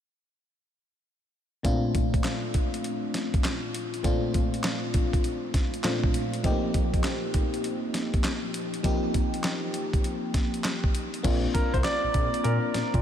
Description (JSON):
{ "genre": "R&B, new jack swing", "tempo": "100 BPM", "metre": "4/4", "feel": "swing 64% on 16ths", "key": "Bb major", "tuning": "A4 = 439 Hz", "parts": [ { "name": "FM electric piano", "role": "accompaniment", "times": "1.6-13.0 s", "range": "Bb2 to G4", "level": "-29 LUFS", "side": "left 1 dB", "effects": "chorus, phaser" }, { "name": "dusty soul sampler-style drum kit", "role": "drums", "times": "1.6-13.0 s", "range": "crash cymbal, handclaps, hi-hat, kick drum, snare drum", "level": "-27 LUFS", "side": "equal", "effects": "none" }, { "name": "smooth synth bass", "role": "bass", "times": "11.2-13.0 s", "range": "Bb1 to Bb2", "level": "-28 LUFS", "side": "equal", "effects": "none" }, { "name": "warm concert grand piano", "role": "melody", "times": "11.5-13.0 s", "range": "Bb4 to D5", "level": "-27 LUFS", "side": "right 1 dB", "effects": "tape echo" } ], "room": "moderate huge ambient reverb, RT60 8.1 s", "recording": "dreamy mix soaked in reverb", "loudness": "-24 LUFS", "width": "side -10 dB against mid", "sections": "1.6-11.2 A section; 11.2-13.0 B section", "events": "none", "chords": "1.6 Bbmaj7; 6.4 F7sus4; 11.2 Bb" }